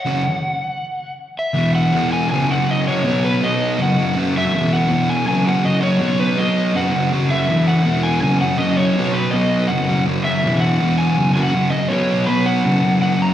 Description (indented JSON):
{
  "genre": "rock",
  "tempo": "162 BPM",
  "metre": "4/4",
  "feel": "straight",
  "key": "unclear",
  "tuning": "A4 = 440 Hz",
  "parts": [
    { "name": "overdriven slide guitar", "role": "melody", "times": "0.0-13.3 s", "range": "B4 to A#5", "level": "-21 LUFS", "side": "equal", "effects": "slapback echo" },
    { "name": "thick fuzz guitar", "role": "riff", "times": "0.1-13.3 s", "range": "E2 to B3", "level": "-16 LUFS", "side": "equal", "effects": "distortion" }
  ],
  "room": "light reverb",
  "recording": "live gig heard through the venue's PA, recital hall reverb",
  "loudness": "-15 LUFS",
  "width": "side -11 dB against mid",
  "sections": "0.0-1.6 A section; 1.6-13.3 B section",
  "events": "none",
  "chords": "0.0 F#5; 1.6 E5; 2.3 F#5; 3.1 B; 3.8 F#5; 4.5 E5; 5.3 F#5; 6.0 B; 6.8 F#5; 7.5 E5; 8.2 F#5; 9.0 B; 9.7 F#5; 10.4 E5; 11.2 F#5; 11.9 B5; 12.6 F#5"
}